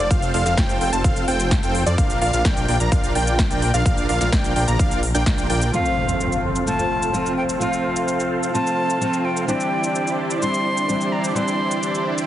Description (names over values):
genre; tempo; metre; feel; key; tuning
EDM, festival progressive house; 128 BPM; 4/4; straight; F major; A4 = 441 Hz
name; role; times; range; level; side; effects
plucky unison lead; arpeggios; 0.0-5.7 s; D5 to Bb5; -25 LUFS; equal; cassette tape, sidechain pumping, digital delay
dense compressed supersaw; riff; 0.0-12.3 s; C4 to Bb5; -24 LUFS; right 1 dB; sidechain pumping, low-pass filter, digital delay
detuned saw bass; bass; 0.0-5.7 s; F1 to F2; -23 LUFS; equal; sidechain pumping
big-room dance drum kit; drums; 0.1-12.3 s; hi-hat, shaker, snare drum; -28 LUFS; equal; none
electronic kick drum; drums; 0.1-5.4 s; none; -20 LUFS; equal; none
breathy bright silver concert flute; melody; 5.7-12.1 s; F5 to D6; -24 LUFS; left 1 dB; digital delay
fingerpicked steel-string acoustic guitar; accompaniment; 5.7-12.3 s; E3 to F4; -24 LUFS; left 1 dB; sidechain pumping
impact; sound effects; 5.7-7.6 s; none; -28 LUFS; equal; none
room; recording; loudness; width
light reverb, digital ambience; heavily compressed radio sound, multiband compression, nothing above 10.6 kHz; -18 LUFS; side -12 dB against mid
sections
0.0-5.7 A section; 5.7-12.3 B section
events
drop 0.0-5.7; impact 5.7-7.6; filter sweep on supersaw synth 5.7-12.3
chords
0.0 F; 2.0 Bb; 5.7 F; 9.5 Cadd9